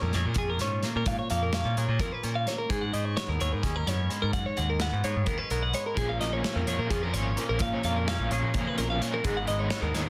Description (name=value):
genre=math rock and midwest emo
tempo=257 BPM (eighths)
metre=7/8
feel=straight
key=unclear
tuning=A4 = 436 Hz
part: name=twangy electric guitar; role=accompaniment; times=0.0-10.1 s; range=G#2 to G#4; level=-37 LUFS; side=equal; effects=phaser
part: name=twelve-string electric guitar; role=arpeggios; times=0.0-10.1 s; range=G#4 to F#5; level=-34 LUFS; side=equal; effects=none
part: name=modern bright picked electric bass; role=bass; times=0.0-10.1 s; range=G#1 to A#2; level=-32 LUFS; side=equal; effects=none
part: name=loose indie drum kit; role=drums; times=0.1-10.1 s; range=hi-hat, kick drum, snare drum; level=-36 LUFS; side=equal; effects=none
part: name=crunchy overdriven guitar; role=riff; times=6.0-10.1 s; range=G#2 to D#4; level=-36 LUFS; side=equal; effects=tremolo
room=light reverb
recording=dense, heavily limited modern master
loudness=-28 LUFS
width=mono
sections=0.0-10.1 A section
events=none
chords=0.0 A#m7; 2.7 G#m11; 6.0 A#m7; 9.2 G#m11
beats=0.13 0.36 0.60 0.83 | 1.06 1.30 1.53 1.77 2.00 2.23 2.47 | 2.70 2.93 3.17 3.40 3.64 3.87 4.10 | 4.34 4.57 4.80 5.04 5.27 5.51 5.74 | 5.97 6.21 6.44 6.68 6.91 7.14 7.38 | 7.61 7.84 8.08 8.31 8.55 8.78 9.02 | 9.25 9.48 9.72 9.95